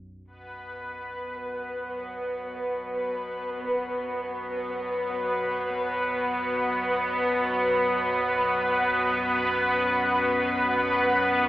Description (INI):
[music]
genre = dark ambient drone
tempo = free time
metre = none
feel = none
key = unclear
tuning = A4 = 441 Hz
[part]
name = deep rumbling drone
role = drone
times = 0.0-11.5 s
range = B1 to F#2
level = -42 LUFS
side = equal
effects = built-in reverb, wide subtle chorus
[part]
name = warm chamber cello section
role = sustained chords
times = 0.3-11.5 s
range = B2 to B3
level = -32 LUFS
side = equal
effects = none
[part]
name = bubbling stepped-filter texture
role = texture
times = 0.3-11.5 s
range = B3 to B4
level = -30 LUFS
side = equal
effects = chorus, built-in reverb
[sound]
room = wet huge ambient reverb, RT60 7.8 s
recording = in a vast, echoing space, telephone sound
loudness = -24 LUFS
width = side -15 dB against mid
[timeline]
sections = 0.3-11.5 A section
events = fade-in on cello section 0.3-11.5; fade-in on synth texture 0.3-11.5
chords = 0.3 B5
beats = free time